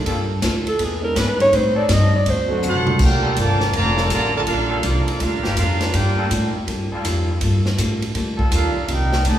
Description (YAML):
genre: jazz, big band swing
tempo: 163 BPM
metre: 4/4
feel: swing 65% on 8ths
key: G minor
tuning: A4 = 436 Hz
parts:
  - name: warm upright piano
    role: accompaniment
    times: 0.0-3.0 s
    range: F#3 to C5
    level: -28 LUFS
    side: right 3 dB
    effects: none
  - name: archtop guitar, miked and amplified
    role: accompaniment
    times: 0.1-9.4 s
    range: A2 to A4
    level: -28 LUFS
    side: left 1 dB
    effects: none
  - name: brilliant trombone section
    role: sustained chords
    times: 0.1-8.8 s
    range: E3 to B4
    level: -30 LUFS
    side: left 1 dB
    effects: none
  - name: upright bass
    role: bass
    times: 0.1-9.4 s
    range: F1 to A2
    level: -21 LUFS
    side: equal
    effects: none
  - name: swinging big-band drum kit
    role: drums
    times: 0.1-9.4 s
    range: crash cymbal, hi-hat, kick drum, ride cymbal, snare drum, toms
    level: -24 LUFS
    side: equal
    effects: none
  - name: breathy alto saxophone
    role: melody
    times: 0.7-2.6 s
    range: G#4 to Eb5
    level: -19 LUFS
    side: equal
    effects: none
  - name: clear trumpet section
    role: melody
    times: 2.7-6.3, 8.5-9.4 s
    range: Bb3 to Bb5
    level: -23 LUFS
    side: right 1 dB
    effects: none
  - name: clear trombone section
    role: second line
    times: 2.7-6.3, 8.5-9.4 s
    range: Bb2 to G4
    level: -26 LUFS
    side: right 3 dB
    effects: none
room: wet recital hall reverb, RT60 1.6 s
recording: recorded in a church or concert hall, small room ambience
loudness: -16 LUFS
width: side -11 dB against mid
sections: 0.0-3.0 A section; 3.0-9.4 B section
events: alto saxophone solo 0.0-3.0; drum fill 2.6-3.0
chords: 0.1 Gm9; 0.8 E7; 1.5 Am7b5; 2.3 D7; 3.0 Gm9; 8.9 Cm9